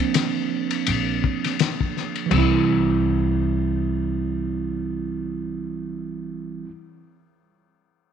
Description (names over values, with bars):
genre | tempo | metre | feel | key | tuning
hip hop, jazz-hop | 83 BPM | 4/4 | swing 57% on 16ths | unclear | A4 = 440 Hz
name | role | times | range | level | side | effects
mellow tine electric piano | accompaniment | 0.0-6.7 s | E3 to E4 | -23 LUFS | right 6 dB | none
cloth-damped thuddy drum kit | drums | 0.0-2.5 s | china cymbal, hi-hat, kick drum, ride cymbal, snare drum, toms | -24 LUFS | left 9 dB | none
upright bass | bass | 0.9-6.7 s | Bb1 to C2 | -26 LUFS | left 3 dB | none
room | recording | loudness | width
moderate echo chamber reverb, RT60 2.1 s | 1960s-style stereo with parts hard left and right | -21 LUFS | side -8 dB against mid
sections
0.0-2.3 A section; 2.3-5.2 B section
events
tine electric piano solo 0.0-2.3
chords
0.0 C9sus4; 2.3 C